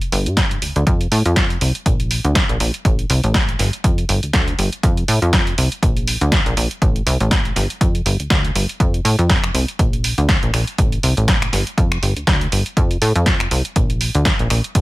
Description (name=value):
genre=filtered disco house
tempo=121 BPM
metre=4/4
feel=swing 56% on 16ths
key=unclear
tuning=A4 = 440 Hz
part: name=punchy analog drum machine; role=drums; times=0.0-14.8 s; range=finger snaps, hi-hat, snare drum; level=-20 LUFS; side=equal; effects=sidechain pumping on hats
part: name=plucky analog bass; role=bass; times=0.1-14.8 s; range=G1 to A2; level=-18 LUFS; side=equal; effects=sidechain pumping, low-pass filter
part: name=electronic kick drum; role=drums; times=0.4-14.8 s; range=none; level=-18 LUFS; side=equal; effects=none
room=little or no reverb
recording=none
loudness=-15 LUFS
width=side -19 dB against mid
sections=0.0-14.8 A section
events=none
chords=none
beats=0.37 | 0.87 1.36 1.86 2.36 | 2.85 3.35 3.84 4.34 | 4.83 5.33 5.83 6.32 | 6.82 7.31 7.81 8.31 | 8.80 9.30 9.79 10.29 | 10.79 11.28 11.78 12.27 | 12.77 13.27 13.76 14.26 | 14.75